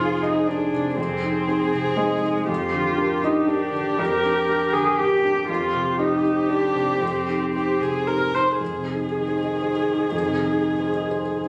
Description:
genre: neoclassical piano and strings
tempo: 119 BPM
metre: 3/4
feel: rubato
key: F dorian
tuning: A4 = 440 Hz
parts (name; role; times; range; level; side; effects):
- muted cello; second line; 0.0-11.5 s; Eb3 to Bb4; -26 LUFS; equal; none
- felt-muted upright piano; accompaniment; 0.0-11.5 s; F2 to Eb5; -28 LUFS; equal; none
- muted viola; accompaniment; 0.0-11.5 s; G4 to C5; -27 LUFS; equal; none
room: wet recital hall reverb, RT60 1.4 s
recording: recorded on a phone in the room, studio ambience, compression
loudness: -22 LUFS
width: mono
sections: 0.0-8.6 A section; 8.6-11.5 B section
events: none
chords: 0.0 Fm7; 2.5 Gm/F; 5.5 Cm/F; 8.6 Fm7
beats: 0.47 | 0.97 1.48 1.97 | 2.49 2.99 3.48 | 3.99 4.49 4.99 | 5.49 5.99 6.50 | 7.02 7.55 8.08 | 8.61 9.12 9.63 | 10.13 10.63 11.12

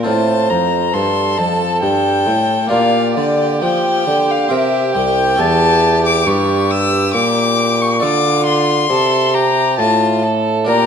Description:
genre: classical, baroque-style sonata movement with continuo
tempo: 68 BPM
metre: 3/4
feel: straight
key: F major, D minor from 5.4 s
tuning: A4 = 441 Hz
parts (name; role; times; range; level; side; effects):
- rich violin; second line; 0.0-10.9 s; F4 to C5; -20 LUFS; right 7 dB; none
- harpsichord; accompaniment; 0.0-10.9 s; C2 to Bb4; -20 LUFS; left 2 dB; none
- mellow bassoon; bass; 0.0-10.9 s; C2 to F3; -18 LUFS; right 2 dB; none
- warm violin; melody; 0.1-10.9 s; D5 to E6; -16 LUFS; left 5 dB; none
room: moderate recital hall reverb, RT60 1.5 s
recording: dark, warm production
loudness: -12 LUFS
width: side -7 dB against mid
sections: 0.0-10.9 A section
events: none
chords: 0.1 F; 2.7 Bb; 4.5 C7; 5.4 A7/E; 8.0 Dm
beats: | 0.06 0.94 1.83 | 2.71 3.62 4.52 | 5.39 6.26 7.14 | 8.02 8.90 9.79 | 10.68

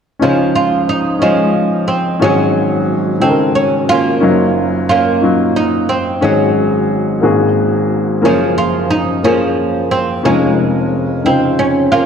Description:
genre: gospel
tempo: 60 BPM (dotted quarters)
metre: 6/8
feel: straight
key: Db major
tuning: A4 = 440 Hz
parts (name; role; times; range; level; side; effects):
- oud; melody; 0.2-12.1 s; F3 to F4; -14 LUFS; right 2 dB; none
- warm upright piano; accompaniment; 0.2-12.1 s; F1 to Eb5; -14 LUFS; left 2 dB; none
room: wet concert hall reverb, RT60 2.0 s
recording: dark, warm production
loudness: -11 LUFS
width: side -7 dB against mid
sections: 0.2-12.1 A section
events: none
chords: 0.2 Dbmaj9; 2.2 Ab7sus4; 4.2 Ebm9/Gb; 6.2 Ab7sus4; 7.2 Ab9sus4; 8.2 Gbmaj9; 10.2 Db69/F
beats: | 0.20 1.21 | 2.21 3.22 | 4.22 5.23 | 6.23 7.23 | 8.24 9.24 | 10.25 11.25

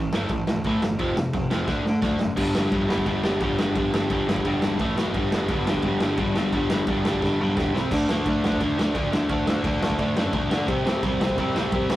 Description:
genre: punk rock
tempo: 173 BPM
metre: 4/4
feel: straight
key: G major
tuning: A4 = 439 Hz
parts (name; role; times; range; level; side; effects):
- biting overdriven guitar; riff; 0.0-12.0 s; F2 to D4; -23 LUFS; equal; none
- fuzz picked electric bass; bass; 0.0-12.0 s; E1 to D3; -30 LUFS; equal; overdrive
- raw garage drum kit; drums; 0.1-12.0 s; crash cymbal, kick drum, ride cymbal, snare drum; -26 LUFS; equal; none
room: light reverb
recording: rough rehearsal-room recording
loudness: -21 LUFS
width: side -15 dB against mid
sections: 0.0-2.4 A section; 2.4-12.0 B section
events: drum fill 1.7-2.4, 7.2-7.9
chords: 0.0 A5; 1.0 F5; 1.7 D; 2.4 G5; 4.8 A5; 5.0 B5; 5.1 G; 7.7 C5; 7.9 D5; 10.7 C5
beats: 0.31 0.65 | 1.00 1.34 1.69 2.03 | 2.38 2.73 3.07 3.42 | 3.76 4.11 4.46 4.80 | 5.15 5.49 5.84 6.19 | 6.53 6.88 7.23 7.57 | 7.92 8.27 8.61 8.96 | 9.30 9.65 10.00 10.34 | 10.69 11.04 11.38 11.73

